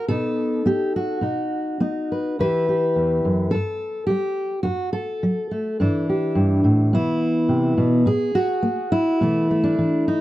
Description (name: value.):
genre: folk, solo fingerstyle acoustic guitar.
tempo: 105 BPM.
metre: 4/4.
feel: straight.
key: E minor.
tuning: A4 = 436 Hz.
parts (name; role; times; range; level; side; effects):
fingerpicked steel-string acoustic guitar; solo; 0.0-10.2 s; E2 to B4; -19 LUFS; equal; none.
room: studio reverb.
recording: dry, close 1970s-style studio recording.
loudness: -19 LUFS.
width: side -15 dB against mid.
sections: 0.0-10.2 A section.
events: none.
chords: 0.1 B; 2.4 Em; 3.5 N.C.; 4.7 F#m; 5.8 Em7/G; 6.9 Bsus4; 8.1 N.C.; 9.2 E5/B.